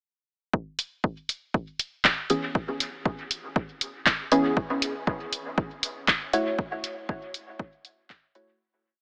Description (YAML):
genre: dub techno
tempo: 119 BPM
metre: 4/4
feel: swing 54% on 16ths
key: C# minor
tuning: A4 = 440 Hz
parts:
  - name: electronic kick drum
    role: drums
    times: 0.5-8.2 s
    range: none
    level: -29 LUFS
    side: equal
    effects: none
  - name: punchy analog drum machine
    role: drums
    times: 0.8-8.5 s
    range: handclaps, hi-hat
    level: -27 LUFS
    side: equal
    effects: dub echo
  - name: filtered dub chord stab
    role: stabs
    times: 2.3-8.6 s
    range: E3 to C#5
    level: -30 LUFS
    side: equal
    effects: chorus, phaser, sidechain pumping, dub echo
room: light reverb, digital ambience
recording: AM radio sound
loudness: -28 LUFS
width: mono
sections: 0.5-8.6 groove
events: filter sweep on synth stab 0.5-8.6; fade-out 5.9-8.6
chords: 0.5 C#m7; 4.6 F#m7